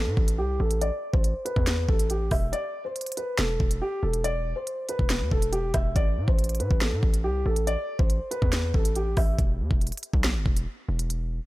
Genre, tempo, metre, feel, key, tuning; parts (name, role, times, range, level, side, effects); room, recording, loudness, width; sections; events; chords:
hip hop, drill; 140 BPM; 4/4; half-time; E minor; A4 = 440 Hz
dark concert grand piano; melody; 0.0-9.4 s; G4 to E5; -30 LUFS; equal; low-pass filter
hard-hitting 808-style bass; bass; 0.0-11.4 s; E1 to A2; -27 LUFS; equal
drill drum kit; drums; 0.2-11.2 s; hi-hat, kick drum, rim click, snare drum; -25 LUFS; equal
little or no reverb; -23 LUFS; side -18 dB against mid
0.0-11.5 A section
filter sweep on grand piano 0.0-2.5; break 2.5-3.4
0.0 A5; 2.5 E5; 6.0 N.C.